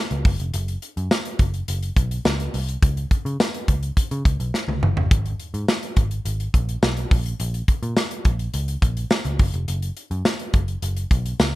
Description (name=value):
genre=1980s-style pop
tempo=105 BPM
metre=4/4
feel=straight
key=unclear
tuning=A4 = 440 Hz
part: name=vintage muted picked electric bass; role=bass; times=0.1-11.6 s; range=E#1 to C#3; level=-24 LUFS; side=equal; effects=none
part: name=modern studio drum kit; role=drums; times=0.1-11.5 s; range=hi-hat, kick drum, snare drum, tambourine, toms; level=-20 LUFS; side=equal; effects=gated reverb
room=light reverb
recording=none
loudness=-20 LUFS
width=side -17 dB against mid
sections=0.0-11.6 A section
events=drum fill 4.5-5.1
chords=none